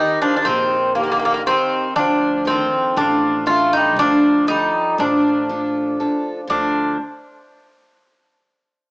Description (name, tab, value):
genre	greek folk, Greek bouzouki band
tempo	119 BPM (eighths)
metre	9/8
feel	straight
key	D phrygian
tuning	A4 = 440 Hz
part	Greek bouzouki	melody	0.0-7.0 s	Bb3 to F4	-16 LUFS	equal	cassette tape
part	Greek bouzouki	second line	0.0-7.0 s	D3 to A3	-25 LUFS	equal	cassette tape
part	picked steel-string acoustic guitar	accompaniment	0.0-7.0 s	D3 to D5	-26 LUFS	equal	cassette tape
part	upright bass	bass	0.0-7.0 s	A1 to Eb2	-34 LUFS	equal	none
room	moderate spring reverb, RT60 2.1 s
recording	home recording on cassette, small speaker sound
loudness	-15 LUFS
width	side -40 dB against mid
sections	0.0-6.5 A section; 6.5-8.9 B section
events	none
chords	0.0 Eb; 2.0 Dm; 6.5 D5